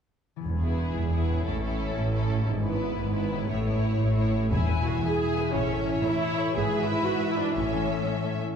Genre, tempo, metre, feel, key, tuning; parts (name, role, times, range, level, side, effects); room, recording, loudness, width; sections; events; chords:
cinematic, heroic adventure film score; 118 BPM (dotted quarters); 6/8; straight; E major; A4 = 440 Hz
concert harp; arpeggios; 0.4-8.6 s; E2 to E5; -33 LUFS; left 4 dB
clear symphonic double bass section; bass; 0.4-7.9 s; E1 to A1; -31 LUFS; right 1 dB
rich symphonic cello section; bass; 0.5-8.4 s; E2 to A2; -30 LUFS; right 2 dB
timpani; percussion; 0.5-0.9, 4.5-5.0 s; E2; -33 LUFS; left 1 dB
rich studio violin section; melody; 0.6-8.4 s; G#4 to G#5; -39 LUFS; left 5 dB
clear studio violin section; second line; 0.6-8.4 s; E4 to G#5; -34 LUFS; left 3 dB
clear studio viola section; accompaniment; 0.6-8.4 s; A3 to G#4; -31 LUFS; right 1 dB
mellow French horn section; sustained chords; 4.5-8.4 s; E3 to E4; -32 LUFS; right 2 dB
wet recital hall reverb, RT60 1.6 s; heard from further back in the room; -24 LUFS; side -7 dB against mid
0.5-4.5 A section; 4.5-8.6 B section
0.5 E; 1.5 A; 2.5 E/G#; 3.5 A; 4.5 E; 5.5 A; 6.5 E/G#; 7.6 A